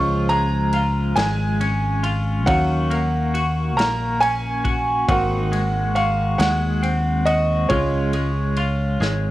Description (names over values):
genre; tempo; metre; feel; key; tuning
six-eight pop ballad; 46 BPM (dotted quarters); 6/8; straight; Db major; A4 = 440 Hz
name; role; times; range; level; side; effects
warm grand piano; accompaniment; 0.0-9.3 s; Gb3 to Db6; -22 LUFS; right 1 dB; none
twelve-string electric guitar; arpeggios; 0.0-9.3 s; Eb3 to Gb4; -25 LUFS; left 1 dB; tremolo
fingered electric bass; bass; 0.0-9.3 s; Ab1 to Eb2; -22 LUFS; equal; none
modern studio drum kit; drums; 0.3-9.2 s; kick drum, ride cymbal, snare drum; -29 LUFS; equal; cassette tape
room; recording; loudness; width
studio reverb; home recording on cassette; -18 LUFS; side -16 dB against mid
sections
0.0-9.3 A section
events
grand piano solo 0.0-9.3; drum fill 9.0-9.3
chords
0.0 Db; 2.5 Ebm7; 5.1 Ab7; 7.7 Db